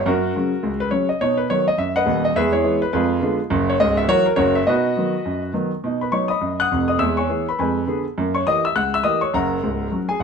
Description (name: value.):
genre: jazz, stride piano.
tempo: 207 BPM.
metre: 4/4.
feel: swing 61% on 8ths.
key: B major.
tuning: A4 = 439 Hz.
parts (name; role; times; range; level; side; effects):
warm concert grand piano; solo; 0.0-10.2 s; C#1 to F#6; -18 LUFS; equal; none.
room: moderate club reverb, RT60 0.7 s.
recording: none.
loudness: -18 LUFS.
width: side -6 dB against mid.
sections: 0.0-5.8 A section; 5.8-10.2 A section.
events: none.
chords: 0.0 F#; 1.2 B; 2.4 E; 2.9 Fdim7; 3.5 F#7; 4.7 B; 7.0 E; 7.6 Fdim7; 8.2 F#7b9; 9.3 F#.